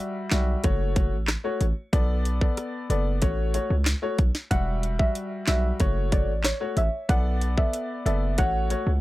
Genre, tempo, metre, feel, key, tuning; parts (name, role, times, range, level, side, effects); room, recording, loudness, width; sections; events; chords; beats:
dancehall; 93 BPM; 4/4; straight; F# phrygian; A4 = 440 Hz
clear concert grand piano; accompaniment; 0.0-8.9 s; G3 to E5; -30 LUFS; left 3 dB; sidechain pumping
hard-hitting 808-style bass; bass; 0.3-9.0 s; E1 to C#2; -25 LUFS; equal
island pop drum kit; drums; 0.3-8.9 s; handclaps, hi-hat, kick drum, rim click, snare drum; -24 LUFS; equal; overdrive
soft round pluck; melody; 4.5-8.8 s; C#5 to F#5; -30 LUFS; right 1 dB; chorus, digital delay
little or no reverb; -22 LUFS; side -17 dB against mid
0.0-9.0 A section
0.0 Emadd9; 0.6 F#m; 1.9 Bm7; 3.2 A6; 4.5 Emadd9; 5.8 F#m; 7.1 Bm7; 8.4 A6
0.64 1.28 | 1.93 2.58 3.22 3.87 | 4.51 5.16 5.80 6.45 | 7.09 7.74 8.38